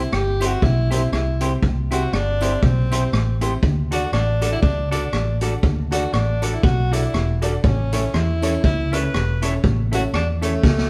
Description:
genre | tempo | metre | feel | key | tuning
ska | 120 BPM | 4/4 | swing 58% on 8ths | D major | A4 = 440 Hz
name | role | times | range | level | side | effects
bright tenor saxophone | melody | 0.0-10.9 s | A3 to B4 | -28 LUFS | equal | none
clear upright piano | stabs | 0.0-10.7 s | C4 to D5 | -32 LUFS | equal | none
vintage muted fingered electric bass | bass | 0.0-10.9 s | E1 to E2 | -24 LUFS | equal | none
mellow electric guitar | riff | 0.1-10.8 s | E2 to E3 | -33 LUFS | equal | none
street-band drum kit | drums | 0.1-10.9 s | hi-hat, kick drum, rim click, snare drum | -24 LUFS | equal | none
semi-hollow electric guitar | accompaniment | 0.4-10.5 s | E4 to D5 | -32 LUFS | equal | none
tambourine | percussion | 0.4-10.5 s | none | -48 LUFS | equal | none
room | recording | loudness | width
moderate stone room reverb, RT60 1.3 s | band playing live in one room | -20 LUFS | mono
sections
0.0-10.9 A section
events
drum fill 10.6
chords
0.0 C; 3.6 D; 7.6 A

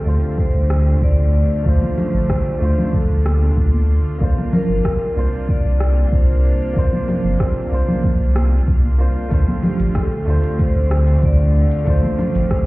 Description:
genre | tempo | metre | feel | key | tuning
sunset chillout | 94 BPM | 4/4 | straight | D minor | A4 = 439 Hz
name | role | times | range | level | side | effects
vibraphone with medium mallets | melody | 0.0-12.7 s | G4 to D5 | -26 LUFS | left 1 dB | tape echo
clear grand piano | accompaniment | 0.0-12.7 s | A3 to C5 | -30 LUFS | equal | auto-pan, low-pass filter, tape echo
warm symphonic string section | sustained chords | 0.0-12.7 s | C3 to F4 | -24 LUFS | right 1 dB | none
warm sub bass | bass | 0.1-12.5 s | G1 to D2 | -15 LUFS | equal | none
smooth R&B drum kit | drums | 0.1-12.6 s | congas, hi-hat, rim click, shaker | -22 LUFS | right 1 dB | none
electronic kick drum | drums | 0.4-12.6 s | none | -18 LUFS | equal | none
congas | percussion | 1.8-12.3 s | none | -26 LUFS | equal | none
room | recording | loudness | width
studio reverb | heard muffled through a wall, stone room reverb, EQ | -14 LUFS | side -20 dB against mid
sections
0.0-12.7 A section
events
filter sweep on grand piano 0.0-12.7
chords
0.0 Dm7; 4.2 C9sus4; 9.3 Dm7

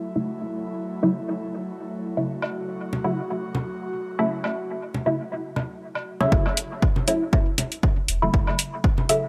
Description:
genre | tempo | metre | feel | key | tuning
dub techno | 119 BPM | 4/4 | swing 54% on 16ths | F# minor | A4 = 440 Hz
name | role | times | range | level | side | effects
airy breathy pad | sustained chords | 0.0-6.3 s | F#3 to F#4 | -34 LUFS | equal | chorus, vintage 12-bit sampler grit, sidechain pumping
filtered dub chord stab | stabs | 0.2-9.3 s | C#3 to E4 | -28 LUFS | equal | phaser, sidechain pumping, dub echo
woodblock and congas | percussion | 2.4-9.1 s | none | -33 LUFS | equal | sidechain pumping on perc, dub echo
warm sub bass | bass | 6.3-8.4 s | E1 to F#1 | -31 LUFS | equal | sidechain pumping
electronic kick drum | drums | 6.3-9.0 s | none | -23 LUFS | equal | none
electronic hi-hat | drums | 6.6-9.2 s | none | -26 LUFS | equal | overdrive, low-pass filter on hats, low-pass filter on room
room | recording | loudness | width
light reverb, digital ambience | bright 1980s-style digital production | -25 LUFS | mono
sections
0.0-6.3 A section; 6.3-9.3 B section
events
filter sweep on synth stab 0.0-6.3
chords
0.0 F#m7

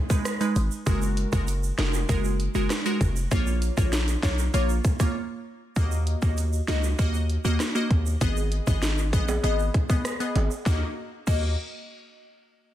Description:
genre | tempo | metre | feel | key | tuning
dancehall | 98 BPM | 4/4 | straight | Eb minor | A4 = 440 Hz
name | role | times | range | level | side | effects
glassy wavetable pluck | accompaniment | 0.1-11.5 s | Ab3 to Eb5 | -29 LUFS | right 1 dB | chorus, phaser, sidechain pumping
island pop drum kit | drums | 0.1-11.4 s | crash cymbal, hi-hat, kick drum, rim click, snare drum | -26 LUFS | equal | vintage 12-bit sampler grit
tube shaker and timbales | percussion | 0.1-11.6 s | none | -37 LUFS | right 6 dB | none
hard-hitting 808-style bass | bass | 0.6-11.6 s | F1 to Eb2 | -25 LUFS | equal | none
room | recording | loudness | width
digital ambience | dense, heavily limited modern master | -22 LUFS | side -12 dB against mid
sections
0.0-5.8 A section; 5.8-10.7 B section; 10.7-12.7 C section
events
break 5.2-5.8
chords
0.0 Abm; 0.9 Gbadd9; 3.3 Bbm; 5.8 Ebm; 8.2 Abm; 10.7 Ebm

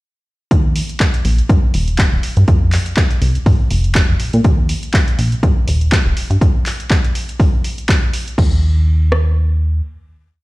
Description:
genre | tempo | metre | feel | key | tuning
filtered disco house | 122 BPM | 4/4 | swing 56% on 16ths | Eb major | A4 = 440 Hz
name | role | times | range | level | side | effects
plucky analog bass | bass | 0.5-9.8 s | Eb1 to Bb2 | -14 LUFS | equal | sidechain pumping
punchy analog drum machine | drums | 0.5-9.2 s | kick drum, rim click | -14 LUFS | equal | none
punchy analog drum machine | drums | 0.5-8.5 s | crash cymbal, handclaps, hi-hat | -22 LUFS | equal | sidechain pumping on hats, sidechain pumping on cymbals
room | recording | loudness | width
digital ambience | played on a big sound system in a bare room, stone room reverb | -12 LUFS | side -20 dB against mid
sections
0.5-8.4 drop; 8.4-10.4 final note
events
drop 0.5-8.4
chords
none

